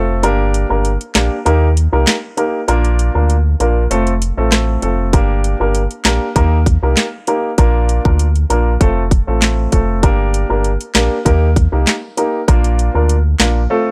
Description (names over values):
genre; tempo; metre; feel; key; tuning
dancehall; 98 BPM; 4/4; straight; unclear; A4 = 442 Hz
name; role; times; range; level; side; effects
warm baby grand piano; accompaniment; 0.0-13.9 s; A3 to Bb4; -20 LUFS; equal; none
sub bass with octave; bass; 0.0-13.7 s; F1 to Eb2; -17 LUFS; equal; none
island pop drum kit; drums; 0.2-13.6 s; handclaps, hi-hat, kick drum, rim click, snare drum; -17 LUFS; equal; none
room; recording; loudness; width
digital ambience; dry, gritty hardware recording; -15 LUFS; mono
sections
0.0-13.9 A section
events
break 0.0-5.1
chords
0.2 Gm; 1.5 Eb; 2.7 Bb; 3.9 F; 5.1 Gm; 6.4 Eb; 7.6 Bb; 8.8 F; 10.0 Gm; 11.3 Eb; 12.5 Bb